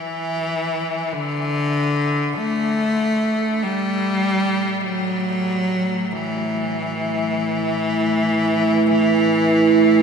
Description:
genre	dark ambient drone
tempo	free time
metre	none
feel	none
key	unclear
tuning	A4 = 437 Hz
part	bright cello	melody	0.0-10.0 s	D3 to A3	-20 LUFS	left 1 dB	ping-pong delay
part	dark analog pad	sustained chords	3.6-10.0 s	A3 to B4	-18 LUFS	right 2 dB	lush chorus
room	wet huge ambient reverb, RT60 8.8 s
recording	in a vast, echoing space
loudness	-18 LUFS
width	side -6 dB against mid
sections	0.0-10.0 A section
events	none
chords	0.0 N.C.; 3.6 A5

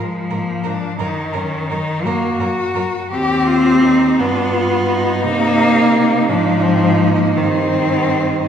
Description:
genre	classical, lyrical piece for cello ensemble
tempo	56 BPM (dotted quarters)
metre	6/8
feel	uneven beats, rubato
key	Eb minor, Eb major from 3.1 s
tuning	A4 = 440 Hz
part	clear cello	melody	0.0-8.5 s	Ab3 to G4	-21 LUFS	left 3 dB	none
part	rich cello	second line	0.0-8.5 s	Eb4 to Bb4	-22 LUFS	right 5 dB	none
part	rich cello	accompaniment	0.0-8.5 s	Eb3 to C4	-16 LUFS	left 1 dB	none
part	rich cello	bass	0.0-8.5 s	Eb2 to C3	-23 LUFS	right 1 dB	none
room	wet scoring stage reverb, RT60 1.8 s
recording	heard from further back in the room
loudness	-14 LUFS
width	side -8 dB against mid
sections	0.0-8.5 A section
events	none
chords	0.0 Bb5; 1.0 Ebm/Gb; 3.1 Eb; 4.2 G7; 5.2 Cm; 6.3 Ab5; 7.4 Eb/G

